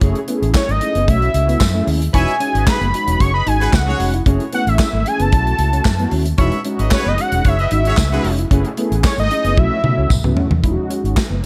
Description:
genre	early-eighties boogie funk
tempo	113 BPM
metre	4/4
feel	straight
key	E major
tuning	A4 = 440 Hz
part	mellow synth brass	accompaniment	0.0-11.5 s	G#3 to G#4	-26 LUFS	equal	chorus
part	mellow electric guitar	riff	0.0-11.5 s	A3 to E4	-29 LUFS	equal	subtle chorus
part	vintage muted fingered electric bass	bass	0.0-11.4 s	E1 to B2	-21 LUFS	equal	none
part	modern studio drum kit	drums	0.0-11.5 s	handclaps, hi-hat, kick drum, snare drum, toms	-20 LUFS	equal	gated reverb
part	tambourine	percussion	0.5-11.3 s	none	-33 LUFS	equal	none
part	fat analog lead	melody	0.6-10.1 s	C#5 to C#6	-23 LUFS	equal	none
part	clear horn section	second line	2.1-8.3 s	F#4 to E5	-28 LUFS	equal	analog delay
room	studio reverb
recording	none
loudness	-16 LUFS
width	mono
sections	0.0-10.6 A section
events	drum fill 9.6-10.6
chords	0.0 F#m9; 1.1 B9sus4; 2.1 Emaj13; 4.3 F#m9; 5.3 B9sus4; 6.4 Emaj13; 8.5 F#m9; 9.6 B9sus4; 10.6 Emaj13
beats	| 0.01 0.55 1.08 1.61 | 2.14 2.67 3.20 3.73 | 4.26 4.79 5.32 5.86 | 6.39 6.92 7.45 7.98 | 8.51 9.04 9.57 10.10 | 10.63 11.16

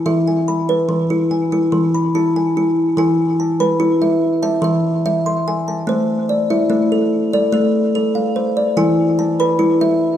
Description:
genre	world meditative, meditative tuned percussion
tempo	145 BPM (eighths)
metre	7/8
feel	straight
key	E phrygian dominant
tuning	A4 = 440 Hz
part	kalimba	solo	0.0-10.2 s	E3 to C6	-14 LUFS	equal	diffuse ambient delay
room	wet scoring stage reverb, RT60 1.8 s, small room ambience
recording	dark, warm production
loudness	-14 LUFS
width	side -10 dB against mid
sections	0.0-3.0 A section; 3.0-10.2 B section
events	none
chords	0.0 E; 5.9 Am; 8.8 E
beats	| 0.07 0.48 0.90 1.31 1.73 2.15 2.56 | 2.98 3.39 3.81 4.22 4.63 5.05 5.46 | 5.88 6.29 6.71 7.12 7.53 7.95 8.36 | 8.78 9.19 9.60 10.02

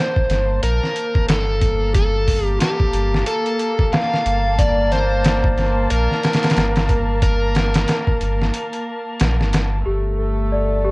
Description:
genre	trip hop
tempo	91 BPM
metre	4/4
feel	swing 59% on 16ths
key	G minor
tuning	A4 = 441 Hz
part	overdriven slide guitar	melody	0.0-9.5 s	G4 to F5	-22 LUFS	equal	dub echo
part	dark chamber string section	sustained chords	0.0-10.9 s	A3 to A5	-25 LUFS	equal	none
part	trip hop sampler-style drum kit	drums	0.2-9.7 s	hi-hat, kick drum, snare drum	-19 LUFS	equal	none
part	warm sub bass	bass	0.3-10.9 s	G1 to Bb1	-20 LUFS	equal	tube saturation
part	worn celesta	arpeggios	9.9-10.9 s	G4 to D5	-22 LUFS	left 2 dB	low-pass filter
room	little or no reverb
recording	worn, warbling old tape, cassette tape, warbly pitch drift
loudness	-16 LUFS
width	side -25 dB against mid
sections	0.0-9.9 A section; 9.9-10.9 B section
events	break 8.5-9.9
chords	0.0 Gm; 9.9 Gsus2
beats	0.63 1.29 | 1.95 2.61 3.27 3.92 | 4.58 5.24 5.90 6.56 | 7.22 7.88 8.54 9.20 | 9.86 10.52

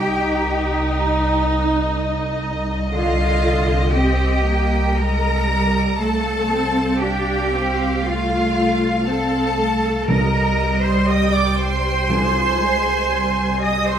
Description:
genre	cinematic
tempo	59 BPM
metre	4/4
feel	rubato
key	C minor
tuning	A4 = 440 Hz
part	rich symphonic violin section	melody	0.0-14.0 s	Eb5 to Ab5	-28 LUFS	equal	none
part	warm symphonic violin section	second line	0.0-14.0 s	F5 to Eb6	-26 LUFS	left 1 dB	none
part	warm symphonic viola section	accompaniment	0.0-14.0 s	D3 to Eb4	-22 LUFS	right 1 dB	none
part	rich symphonic cello section	bass	0.0-14.0 s	F4 to Eb5	-22 LUFS	right 1 dB	none
part	rich symphonic double bass section	bass	0.0-14.0 s	C2	-23 LUFS	equal	none
part	timpani	percussion	10.1-13.6 s	C3	-23 LUFS	right 1 dB	none
room	wet stone room reverb, RT60 1.1 s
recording	heard from further back in the room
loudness	-16 LUFS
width	side -9 dB against mid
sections	0.0-14.0 A section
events	none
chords	0.0 Eb/C; 1.9 Cm7; 6.0 F/C; 10.1 Cm7; 12.1 Ab/C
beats	0.88 | 1.92 2.93 3.95 4.98 | 6.01 7.03 8.06 9.06 | 10.08 11.09 12.09 13.11

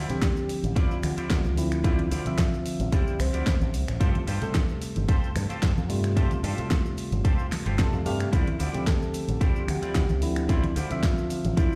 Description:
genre	nu-disco, nu disco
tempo	111 BPM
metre	4/4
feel	straight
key	D minor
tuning	A4 = 443 Hz
part	clean electric guitar	riff	0.0-11.8 s	E4 to A5	-40 LUFS	equal	analog chorus, digital delay
part	picked electric bass with an envelope filter	bass	0.0-11.5 s	G1 to G2	-30 LUFS	equal	none
part	bright tine electric piano	accompaniment	0.1-11.8 s	C3 to E5	-34 LUFS	equal	none
part	pop drum kit	drums	0.1-11.7 s	finger snaps, hi-hat, snare drum	-36 LUFS	equal	none
part	congas and maracas	percussion	0.1-11.8 s	none	-38 LUFS	equal	none
part	soft octave-layered synth lead	melody	0.2-3.7, 8.9-11.8 s	E4 to C5	-36 LUFS	equal	chorus, dub echo
part	electronic kick drum	drums	0.2-11.7 s	none	-26 LUFS	equal	none
room	digital ambience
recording	played on a big sound system in a bare room, stone room reverb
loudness	-26 LUFS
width	mono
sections	0.0-11.8 A section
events	clean electric guitar fill 7.5-8.3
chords	0.0 Dm9; 4.0 G9sus4; 8.3 Dm9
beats	0.22 0.76 1.30 | 1.84 2.38 2.92 3.47 | 4.01 4.55 5.09 5.63 | 6.17 6.71 7.25 7.79 | 8.33 8.87 9.41 9.95 | 10.49 11.03 11.57

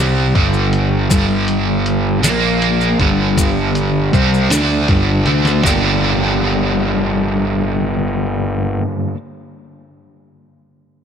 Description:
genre	psychedelic rock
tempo	53 BPM (dotted quarters)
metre	6/8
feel	straight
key	G minor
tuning	A4 = 439 Hz
part	crunchy overdriven guitar	riff	0.0-9.2 s	G2 to G4	-16 LUFS	right 1 dB	harmonic tremolo
part	fuzz picked electric bass	bass	0.0-8.8 s	G1 to D2	-18 LUFS	equal	overdrive
part	lo-fi sampler-style drum kit	drums	0.4-5.8 s	hi-hat, kick drum, snare drum, toms	-19 LUFS	equal	none
part	maracas	percussion	0.5-6.0 s	none	-26 LUFS	left 6 dB	none
room	light reverb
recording	none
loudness	-13 LUFS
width	side -8 dB against mid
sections	0.0-5.6 A section; 5.6-7.9 B section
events	drum fill 5.3-5.6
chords	0.4 G5; 2.2 Bb5; 3.0 G5; 5.6 Gm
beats	| 1.11 2.24 | 3.37 4.50 | 5.63 6.76

